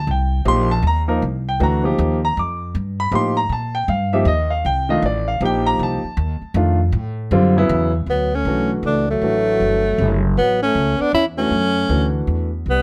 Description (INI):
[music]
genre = jazz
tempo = 157 BPM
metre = 3/4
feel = swing 65% on 8ths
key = F mixolydian, D major from 8.1 s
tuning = A4 = 441 Hz
[part]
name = warm grand piano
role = accompaniment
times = 0.0-12.5 s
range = C#3 to D6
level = -22 LUFS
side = equal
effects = none
[part]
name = upright bass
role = bass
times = 0.0-12.8 s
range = F#1 to Bb2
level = -23 LUFS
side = equal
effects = none
[part]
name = breathy tenor saxophone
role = melody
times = 8.1-12.8 s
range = A3 to E4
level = -21 LUFS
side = equal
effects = none
[part]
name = breathy trombone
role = second line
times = 8.1-12.8 s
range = F#3 to C#4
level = -27 LUFS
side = equal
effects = none
[sound]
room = light reverb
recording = none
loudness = -19 LUFS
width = mono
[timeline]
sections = 0.0-8.1 A section; 8.1-12.8 B section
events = none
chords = 0.0 F9sus4; 6.9 A7; 8.1 Dmaj9